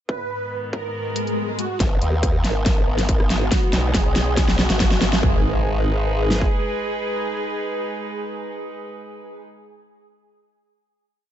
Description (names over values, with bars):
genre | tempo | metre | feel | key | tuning
heavy wobble dubstep | 140 BPM | 4/4 | half-time | G# minor | A4 = 440 Hz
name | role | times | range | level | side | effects
soft supersaw | melody | 0.1-9.4 s | F#4 to B4 | -28 LUFS | right 1 dB | low-pass filter, tape echo
warm studio string section | sustained chords | 0.1-9.4 s | G#2 to B4 | -31 LUFS | right 2 dB | sidechain pumping, low-pass filter
dubstep drum kit | drums | 0.1-6.5 s | kick drum, snare drum | -21 LUFS | equal | distortion, high-pass filter on kick, high-pass filter on snare
dubstep drum kit | drums | 0.3-5.2 s | hi-hat, rim click, snare drum | -23 LUFS | equal | overdrive, low-pass filter on hats, low-pass filter on snare
swell, riser and impact | sound effects | 1.1-9.5 s | none | -30 LUFS | equal | none
formant-sweep wobble bass | bass | 1.8-6.5 s | F#1 to D#2 | -21 LUFS | equal | chorus, overdrive
room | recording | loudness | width
little or no reverb | dark, warm production, nothing above 7.9 kHz | -19 LUFS | side -11 dB against mid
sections
0.1-1.8 intro; 1.8-5.2 build; 5.2-8.7 final chord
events
filter sweep on drum 0.1-1.8; kick drops out 0.9-1.8; swell 1.1-1.8; build-up 1.8-5.2; drum fill 1.8-5.2; filter sweep on supersaw synth 1.8-5.2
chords
0.1 G#m